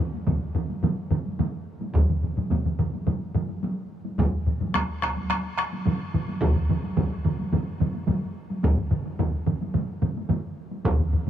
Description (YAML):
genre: japanese traditional, taiko drum ensemble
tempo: 108 BPM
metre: 4/4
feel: straight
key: none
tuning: none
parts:
  - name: taiko ensemble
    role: percussion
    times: 0.1-11.3 s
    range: none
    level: -32 LUFS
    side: equal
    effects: none
  - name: solo taiko drums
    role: percussion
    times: 0.3-11.3 s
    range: none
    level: -28 LUFS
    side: left 4 dB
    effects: none
  - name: taiko ensemble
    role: percussion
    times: 0.3-11.3 s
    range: none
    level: -29 LUFS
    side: right 5 dB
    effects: none
  - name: taiko ensemble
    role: percussion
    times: 0.3-11.0 s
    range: none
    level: -26 LUFS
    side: right 1 dB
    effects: none
room: light reverb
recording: small room ambience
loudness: -24 LUFS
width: side -10 dB against mid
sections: 0.0-11.3 A section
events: none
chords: none